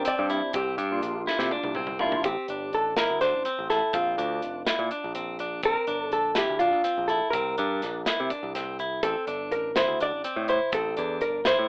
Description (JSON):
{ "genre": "progressive instrumental, band music in an uneven meter", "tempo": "248 BPM (eighths)", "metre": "7/8", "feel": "straight", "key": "unclear", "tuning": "A4 = 440 Hz", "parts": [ { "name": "hollow-body jazz guitar", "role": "melody", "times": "0.0-11.7 s", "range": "F4 to D5", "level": "-29 LUFS", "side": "equal", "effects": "none" }, { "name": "barky tine electric piano", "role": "accompaniment", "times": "0.0-2.2 s", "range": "Bb3 to G4", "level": "-33 LUFS", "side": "equal", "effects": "overdrive, ensemble chorus" }, { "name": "clean electric guitar", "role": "arpeggios", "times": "0.0-11.7 s", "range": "C4 to E4", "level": "-33 LUFS", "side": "equal", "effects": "none" }, { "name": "modern bright picked electric bass", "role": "bass", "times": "0.0-11.7 s", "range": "F1 to C3", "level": "-36 LUFS", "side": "equal", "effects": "none" }, { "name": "modern studio drum kit", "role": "drums", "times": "0.0-11.6 s", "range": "hi-hat, kick drum, snare drum, toms", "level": "-34 LUFS", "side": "equal", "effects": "none" } ], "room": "light reverb", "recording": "rough home demo mix, telephone sound", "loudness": "-27 LUFS", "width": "mono", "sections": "0.0-2.2 A section; 2.2-11.7 B section", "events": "drum fill 1.3-2.2", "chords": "0.0 Bb69 (rootless); 0.5 C7sus4; 2.2 Am7; 3.9 Bbadd9/F; 5.6 Bb69; 7.3 C5; 9.0 Am7" }